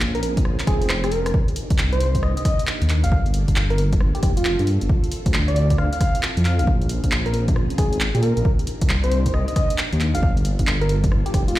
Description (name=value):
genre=UK garage, two-step garage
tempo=135 BPM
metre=4/4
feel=swing 64% on 16ths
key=C dorian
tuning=A4 = 440 Hz
part: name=soft string machine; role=sustained chords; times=0.0-11.6 s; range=Bb3 to A4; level=-33 LUFS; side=equal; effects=ensemble chorus, sidechain pumping
part: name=dark detuned saw bass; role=bass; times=0.0-11.6 s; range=F1 to Bb2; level=-20 LUFS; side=equal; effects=none
part: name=punchy analog drum machine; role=drums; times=0.0-11.6 s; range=handclaps, hi-hat, rim click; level=-27 LUFS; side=equal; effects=none
part: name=soft struck synth lead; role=melody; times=0.1-11.6 s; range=F4 to F5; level=-27 LUFS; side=equal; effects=chorus, digital delay
part: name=electronic kick drum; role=drums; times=0.4-11.5 s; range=none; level=-20 LUFS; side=equal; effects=none
part: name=swell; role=sound effects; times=0.6-1.3 s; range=none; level=-32 LUFS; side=right 1 dB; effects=none
room=digital ambience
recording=played on a big sound system in a bare room, large studio reverb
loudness=-18 LUFS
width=side -15 dB against mid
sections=0.0-11.6 A section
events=swell 0.6-1.3; drum fill 0.7-1.3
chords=0.0 Bbm9; 1.3 Cm9; 3.1 Gm9; 4.9 Dm9; 6.7 Bbm9; 8.4 Cm9; 10.2 Gm9